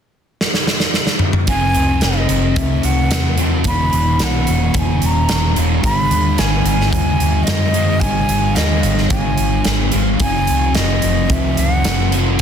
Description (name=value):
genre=rock, shoegaze and dream pop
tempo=110 BPM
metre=4/4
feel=straight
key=unclear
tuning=A4 = 440 Hz
part: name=big rock drum kit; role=drums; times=0.4-12.4 s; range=hi-hat, kick drum, snare drum, toms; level=-19 LUFS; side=right 1 dB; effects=none
part: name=breathy mellow silver concert flute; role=melody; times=1.5-12.1 s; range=D#5 to B5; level=-21 LUFS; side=right 1 dB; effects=analog delay
part: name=fuzz guitar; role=riff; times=1.5-12.4 s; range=E2 to G#3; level=-18 LUFS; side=left 1 dB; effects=distortion, ensemble chorus
part: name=vintage muted fingered electric bass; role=bass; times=1.5-12.4 s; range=E1 to F#2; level=-19 LUFS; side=equal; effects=none
room=light reverb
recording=dense, heavily limited modern master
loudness=-13 LUFS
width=side -8 dB against mid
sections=0.0-1.5 A section; 1.5-12.4 B section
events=drum fill 0.4-1.5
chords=0.0 N.C.; 1.5 F#sus2; 3.7 E5; 5.8 G#5; 10.2 F#sus2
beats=0.40 0.94 | 1.49 2.03 2.57 3.12 | 3.66 4.20 4.75 5.29 | 5.84 6.38 6.93 7.47 | 8.02 8.56 9.11 9.66 | 10.21 10.75 11.30 11.85 | 12.40